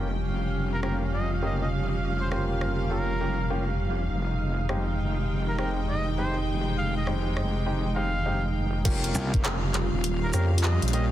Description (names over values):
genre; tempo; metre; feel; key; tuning
glitch hop; 101 BPM; 4/4; swing 64% on 16ths; unclear; A4 = 440 Hz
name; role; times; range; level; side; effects
warbly tape-like pad; sustained chords; 0.0-11.1 s; Db3 to G4; -34 LUFS; right 1 dB; chorus, built-in reverb, sidechain pumping
warm grand piano; stabs; 0.0-11.1 s; Ab3 to G4; -35 LUFS; left 1 dB; vintage 12-bit sampler grit, sidechain pumping, digital delay
wobble bass; bass; 0.0-11.1 s; Eb1 to F2; -28 LUFS; equal; chorus
dark chamber string section; texture; 0.0-11.1 s; Ab3 to G5; -34 LUFS; right 2 dB; sidechain pumping
warm trumpet; melody; 0.7-11.1 s; Bb4 to F5; -35 LUFS; equal; digital delay
drum and bass drum kit; drums; 0.8-11.1 s; crash cymbal, handclaps, hi-hat, rim click, shaker; -32 LUFS; equal; soft clipping on snare
electronic kick drum; drums; 8.9-9.4 s; none; -25 LUFS; equal; none
gritty slap bass; bass; 9.1-9.3 s; C2; -27 LUFS; equal; overdrive
room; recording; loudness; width
light reverb, digital ambience; dense, heavily limited modern master; -24 LUFS; side -13 dB against mid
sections
0.0-8.9 A section; 8.9-11.1 B section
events
filter sweep on ambient pad 0.0-8.9; drop 8.9-11.1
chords
0.0 Eb9/F (rootless); 4.1 Fm9; 8.9 Eb9